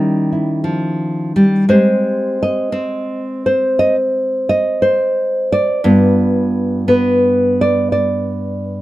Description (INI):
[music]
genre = solo jazz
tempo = 58 BPM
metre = 4/4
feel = swing 69% on 8ths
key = unclear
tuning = A4 = 440 Hz
[part]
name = nylon-string guitar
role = solo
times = 0.0-8.8 s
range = G2 to Eb5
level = -13 LUFS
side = equal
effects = none
[sound]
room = moderate club reverb, RT60 0.6 s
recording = close, detailed microphones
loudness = -13 LUFS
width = side -16 dB against mid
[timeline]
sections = 0.0-8.8 A section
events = none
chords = 0.0 Eb7b9; 1.7 Abmaj7; 5.8 G7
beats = 0.65 | 1.68 2.72 3.76 4.80 | 5.84 6.87 7.91